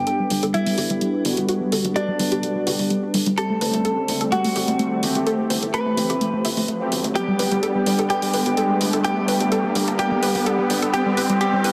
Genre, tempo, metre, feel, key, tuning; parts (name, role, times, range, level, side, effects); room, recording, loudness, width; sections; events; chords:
progressive house; 127 BPM; 4/4; straight; G major; A4 = 443 Hz
direct-recorded clean electric guitar; melody; 0.0-11.7 s; D4 to B4; -28 LUFS; equal; subtle chorus, delay
soft round pluck; second line; 0.0-11.7 s; D5 to B5; -35 LUFS; equal
airy breathy pad; sustained chords; 0.0-11.7 s; G3 to B4; -30 LUFS; equal; chorus
soft supersaw; stabs; 0.0-11.7 s; G3 to G4; -27 LUFS; equal; low-pass filter, delay
tight sequencer bass; bass; 0.0-11.7 s; G1; -35 LUFS; equal; high-pass filter
riser; sound effects; 1.8-11.7 s; -32 LUFS; equal
analog pluck; arpeggios; 0.1-11.7 s; G3 to C5; -28 LUFS; equal; chorus, delay
electronic hi-hat; drums; 0.1-11.7 s; -30 LUFS; equal; overdrive
moderate lush hall reverb, RT60 1.9 s, digital ambience; dense, heavily limited modern master; -21 LUFS; mono
0.0-11.7 A section
build-up 0.0-11.7; filter sweep on synth arpeggio sound 0.0-11.7; filter sweep on supersaw synth 0.0-11.7; filter sweep on analog synth pad 0.0-11.7; riser 1.8-11.7
0.0 Gmaj7; 3.4 Am7/G; 7.2 G; 10.9 G6